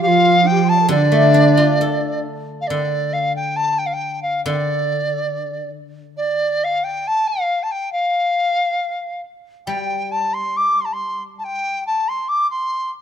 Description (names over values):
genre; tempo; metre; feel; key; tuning
chinese traditional, Chinese chamber ensemble; 69 BPM; 2/4; rubato; D yu mode; A4 = 440 Hz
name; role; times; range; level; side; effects
bright reedy large dizi; melody; 0.0-12.9 s; D5 to D6; -18 LUFS; equal; none
bright low xiao; second line; 0.0-2.3 s; D4 to C6; -20 LUFS; left 7 dB; none
clear cello; second line; 0.0-2.2 s; D3 to F3; -18 LUFS; right 7 dB; none
guzheng; accompaniment; 0.9-7.0, 9.7-12.3 s; D3 to A4; -22 LUFS; left 4 dB; none
room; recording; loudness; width
light reverb; close, detailed microphones; -16 LUFS; side -8 dB against mid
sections
0.0-2.7 A section; 2.7-13.0 B section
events
none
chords
none